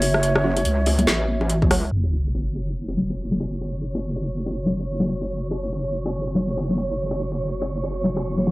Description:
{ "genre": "deep dubstep", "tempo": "142 BPM", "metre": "4/4", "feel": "swing 59% on 16ths, half-time", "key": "unclear", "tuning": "A4 = 439 Hz", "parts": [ { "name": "breathy bright ney", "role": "melody", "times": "0.0-1.5 s", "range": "C#5", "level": "-28 LUFS", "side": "equal", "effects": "dub echo" }, { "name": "dark analog pad", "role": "sustained chords", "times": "0.0-8.5 s", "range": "F#4 to E5", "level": "-31 LUFS", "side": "right 1 dB", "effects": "chorus" }, { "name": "wobble bass", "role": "bass", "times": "0.0-8.5 s", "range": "F#1 to C#2", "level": "-25 LUFS", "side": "equal", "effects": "chorus, tube saturation" }, { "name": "garage drum kit", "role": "drums", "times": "0.0-8.5 s", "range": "hi-hat, rim click, snare drum", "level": "-24 LUFS", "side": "equal", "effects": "low-pass filter on hats, low-pass filter on snare" }, { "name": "bongos and congas", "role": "percussion", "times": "0.0-8.4 s", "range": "none", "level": "-26 LUFS", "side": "left 1 dB", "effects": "dub echo" }, { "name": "filtered dub chord stab", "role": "stabs", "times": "0.4-8.5 s", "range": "F#3 to F#4", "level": "-27 LUFS", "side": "right 1 dB", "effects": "phaser, lush chorus, cassette tape, dub echo" }, { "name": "electronic kick drum", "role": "drums", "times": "1.6-1.7 s", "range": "none", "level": "-20 LUFS", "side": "equal", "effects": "none" }, { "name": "sub drop", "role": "sound effects", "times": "1.9-3.6 s", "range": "none", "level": "-26 LUFS", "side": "equal", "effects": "none" }, { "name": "wind-like tuned noise texture", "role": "texture", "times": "3.2-8.5 s", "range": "C#5", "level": "-32 LUFS", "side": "right 4 dB", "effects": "built-in reverb" } ], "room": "light reverb", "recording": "dry, gritty hardware recording, vinyl crackle, low-pass filter", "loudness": "-21 LUFS", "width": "side -20 dB against mid", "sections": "0.0-1.9 A section; 1.9-8.5 B section", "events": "impact 1.9-3.6; filter sweep 1.9-8.5", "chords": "0.0 F#5", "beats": "| 0.23 0.65 1.07 1.50 | 1.92 2.34 2.76 3.19 | 3.61 4.03 4.45 4.88 | 5.30 5.72 6.14 6.57 | 6.99 7.41 7.83 8.26" }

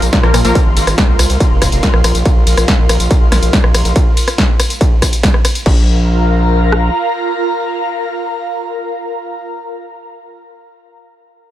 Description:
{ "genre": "driving peak-time techno", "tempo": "141 BPM", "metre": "4/4", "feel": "straight", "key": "unclear", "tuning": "A4 = 438 Hz", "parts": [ { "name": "gritty driven synth bass", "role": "bass", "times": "0.0-6.9 s", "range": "F1 to C2", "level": "-14 LUFS", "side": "equal", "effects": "sidechain pumping" }, { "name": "punchy analog drum machine", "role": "drums", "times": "0.0-5.7 s", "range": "crash cymbal, hi-hat, ride cymbal, rim click, snare drum, tambourine", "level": "-16 LUFS", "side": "equal", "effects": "sidechain pumping on hats, sidechain pumping on cymbals, sidechain pumping on perc" }, { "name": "airy breathy pad", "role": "texture", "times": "0.0-9.5 s", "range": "F4 to C6", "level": "-20 LUFS", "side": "equal", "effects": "chorus, phaser, sidechain pumping" }, { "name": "techno drum kit", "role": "drums", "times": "0.1-6.8 s", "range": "kick drum, rim click", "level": "-12 LUFS", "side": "equal", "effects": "distortion" }, { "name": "rave stab", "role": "stabs", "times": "0.2-0.6 s", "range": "F3 to Bb4", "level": "-20 LUFS", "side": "left 1 dB", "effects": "chorus, built-in reverb, sidechain pumping, dub echo" } ], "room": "digital ambience", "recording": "none", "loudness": "-10 LUFS", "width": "side -13 dB against mid", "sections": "0.0-5.7 A section; 5.7-9.1 B section", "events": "drop 0.0-5.7", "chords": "0.0 Bb5", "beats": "0.13 | 0.55 0.98 1.40 1.83 | 2.25 2.68 3.11 3.53 | 3.96 4.38 4.81 5.23 | 5.66 6.08 6.51 6.94 | 7.36 7.79 8.21 8.64" }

